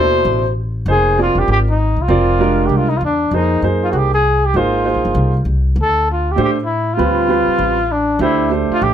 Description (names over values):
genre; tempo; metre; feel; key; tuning
modal jazz; 196 BPM; 4/4; swing 62% on 8ths; unclear; A4 = 442 Hz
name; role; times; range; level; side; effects
breathy trumpet; melody; 0.0-8.9 s; D4 to C5; -16 LUFS; left 1 dB; none
warm baby grand piano; accompaniment; 0.0-8.9 s; B2 to D5; -17 LUFS; right 3 dB; none
upright bass; bass; 0.0-8.9 s; E1 to A2; -18 LUFS; equal; none
room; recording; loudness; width
light reverb; none; -13 LUFS; side -9 dB against mid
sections
0.0-8.9 A section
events
none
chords
0.0 D7sus2; 0.9 Fm11; 5.8 Dm11